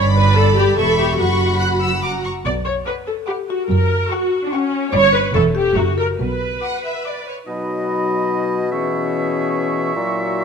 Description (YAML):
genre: cinematic, playful, whimsical film cue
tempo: 144 BPM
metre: 3/4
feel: straight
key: B minor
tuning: A4 = 440 Hz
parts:
  - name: marimba with medium mallets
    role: melody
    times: 0.0-7.2 s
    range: C#4 to D5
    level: -23 LUFS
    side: left 9 dB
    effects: none
  - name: warm studio violin section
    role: melody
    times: 0.0-7.4 s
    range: B5 to F#6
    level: -26 LUFS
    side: left 2 dB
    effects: none
  - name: warm studio violin section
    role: second line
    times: 0.0-7.4 s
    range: C#5 to C#6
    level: -25 LUFS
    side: left 2 dB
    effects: none
  - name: dark studio viola section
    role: accompaniment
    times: 0.0-7.2 s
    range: C#4 to D5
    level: -20 LUFS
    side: right 2 dB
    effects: none
  - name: warm studio cello section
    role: bass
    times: 0.0-6.5 s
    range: E2 to B2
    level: -21 LUFS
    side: right 3 dB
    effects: none
  - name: warm studio double bass section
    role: bass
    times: 0.0-6.5 s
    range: E1 to B1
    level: -22 LUFS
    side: right 3 dB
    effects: none
  - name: clear clarinet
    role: second line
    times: 7.5-10.4 s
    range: F#4 to G#4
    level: -27 LUFS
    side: left 5 dB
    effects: none
  - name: clear oboe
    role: second line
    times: 7.5-10.4 s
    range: D#5 to E5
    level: -26 LUFS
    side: right 1 dB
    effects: none
  - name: mellow hollow small flute group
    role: second line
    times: 7.5-10.4 s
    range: B5 to C#6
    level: -26 LUFS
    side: right 3 dB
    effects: none
  - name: clear bassoon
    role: accompaniment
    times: 7.5-10.4 s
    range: A#2 to B2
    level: -23 LUFS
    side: equal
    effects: none
  - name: mellow French horn section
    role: sustained chords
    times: 7.5-10.4 s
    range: E3 to E4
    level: -24 LUFS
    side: left 7 dB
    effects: none
room: light reverb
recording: close, detailed microphones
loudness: -16 LUFS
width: side -6 dB against mid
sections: 0.0-7.5 A section; 7.5-10.4 B section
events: none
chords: 0.0 G; 0.8 C#m7b5/E; 1.2 F#sus4; 2.5 Bm; 3.7 F#; 4.9 G; 5.3 C#m7b5/E; 5.8 F#7; 6.2 Bm; 7.5 B; 8.7 C#m7/B